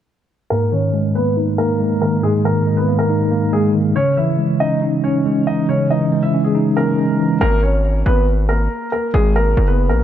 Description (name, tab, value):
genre	hip hop, drill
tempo	139 BPM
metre	4/4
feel	half-time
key	G# minor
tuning	A4 = 440 Hz
part	dark baby grand piano	melody	0.5-10.0 s	G#3 to E5	-19 LUFS	equal	low-pass filter
part	mellow tine electric piano	accompaniment	0.5-7.4 s	G#2 to D#4	-16 LUFS	equal	medium stereo tremolo, low-pass filter
part	distorted 808-style bass	bass	7.4-10.0 s	F#1 to A#1	-15 LUFS	equal	distortion
room	light reverb, studio reverb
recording	none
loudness	-14 LUFS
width	side -10 dB against mid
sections	0.5-7.4 A section; 7.4-10.0 B section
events	filter sweep 0.5-7.4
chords	0.5 G#sus2; 4.0 C#madd9; 7.4 G#sus2